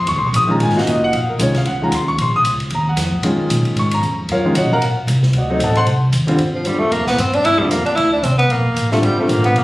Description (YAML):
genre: modal jazz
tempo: 228 BPM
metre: 4/4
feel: swing 58% on 8ths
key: Eb dorian, G dorian from 6.4 s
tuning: A4 = 440 Hz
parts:
  - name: warm upright piano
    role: accompaniment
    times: 0.0-9.5 s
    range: D3 to Eb6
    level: -17 LUFS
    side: equal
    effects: none
  - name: upright bass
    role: bass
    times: 0.0-9.6 s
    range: F1 to Bb2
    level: -19 LUFS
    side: equal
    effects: none
  - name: open jazz drum kit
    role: drums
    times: 0.1-9.6 s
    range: hi-hat, kick drum, ride cymbal, snare drum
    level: -27 LUFS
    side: equal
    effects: none
  - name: mellow tenor saxophone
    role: melody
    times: 6.5-9.6 s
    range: F3 to E4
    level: -16 LUFS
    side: equal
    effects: none
room: light reverb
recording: recorded on a phone in the room, club reverb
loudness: -14 LUFS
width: side -18 dB against mid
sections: 0.0-6.4 A section; 6.4-9.6 A section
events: tenor saxophone solo 6.4-9.6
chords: 0.0 Ebm11; 5.3 D7b9; 6.4 Gm9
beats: | 0.08 0.34 0.60 0.87 | 1.13 1.40 1.66 1.92 | 2.19 2.45 2.71 2.98 | 3.24 3.50 3.77 4.03 | 4.29 4.56 4.82 5.08 | 5.34 5.61 5.87 6.13 | 6.40 6.66 6.92 7.18 | 7.45 7.71 7.97 8.24 | 8.50 8.76 9.03 9.29 | 9.55